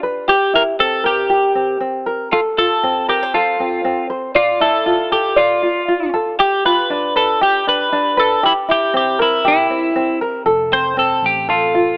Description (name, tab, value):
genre	acoustic pop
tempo	118 BPM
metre	4/4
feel	swing 55% on 16ths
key	F major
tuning	A4 = 441 Hz
part	tenor ukulele	accompaniment	0.0-12.0 s	C4 to D5	-20 LUFS	equal	none
part	twelve-string electric guitar	melody	0.3-12.0 s	E4 to C5	-18 LUFS	equal	none
part	vintage muted fingered electric bass	bass	10.5-12.0 s	F1 to A1	-36 LUFS	equal	none
room	light reverb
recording	AM radio sound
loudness	-16 LUFS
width	mono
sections	0.0-10.5 A section; 10.5-12.0 B section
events	none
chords	0.3 C7; 2.3 F; 4.4 Dmadd9; 6.4 G7; 8.4 C7; 10.5 F